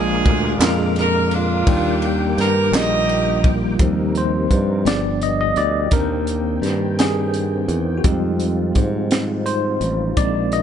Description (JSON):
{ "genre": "slow gospel", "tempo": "56 BPM (dotted quarters)", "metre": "6/8", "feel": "straight", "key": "Eb major", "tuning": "A4 = 440 Hz", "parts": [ { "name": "warm saxophone section", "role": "melody", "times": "0.0-3.8 s", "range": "Bb3 to Eb5", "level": "-21 LUFS", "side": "right 2 dB", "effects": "none" }, { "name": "barky tine electric piano", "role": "accompaniment", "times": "0.0-10.6 s", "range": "Bb2 to Eb5", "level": "-21 LUFS", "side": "left 2 dB", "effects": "fast stereo tremolo" }, { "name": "tonewheel organ", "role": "sustained chords", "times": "0.0-10.6 s", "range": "Eb3 to D6", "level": "-29 LUFS", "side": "right 3 dB", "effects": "slow rotary speaker, chorus vibrato" }, { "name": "modern bright fingered electric bass", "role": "bass", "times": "0.0-10.6 s", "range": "G1 to Ab2", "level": "-22 LUFS", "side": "equal", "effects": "none" }, { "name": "crisp fusion drum kit", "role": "drums", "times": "0.3-10.6 s", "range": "hi-hat, kick drum, ride cymbal, snare drum", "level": "-21 LUFS", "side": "equal", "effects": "none" }, { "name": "group handclap", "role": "percussion", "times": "0.6-3.1 s", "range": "none", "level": "-26 LUFS", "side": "right 3 dB", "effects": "none" }, { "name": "warm French horn section", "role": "sustained chords", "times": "3.8-10.6 s", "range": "Eb3 to Eb4", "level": "-32 LUFS", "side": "right 1 dB", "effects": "none" } ], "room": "little or no reverb", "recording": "nothing above 10.9 kHz", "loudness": "-16 LUFS", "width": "side -8 dB against mid", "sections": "0.0-3.8 A section; 3.8-10.6 B section", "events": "tine electric piano solo 3.8-10.6", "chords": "0.0 Bb7; 1.7 Ebmaj7; 3.8 Eb6; 4.9 G7; 5.9 Cm7/Eb; 8.0 Fm7", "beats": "0.61 | 1.67 2.73 | 3.79 4.86 | 5.92 6.98 | 8.05 9.11 | 10.18" }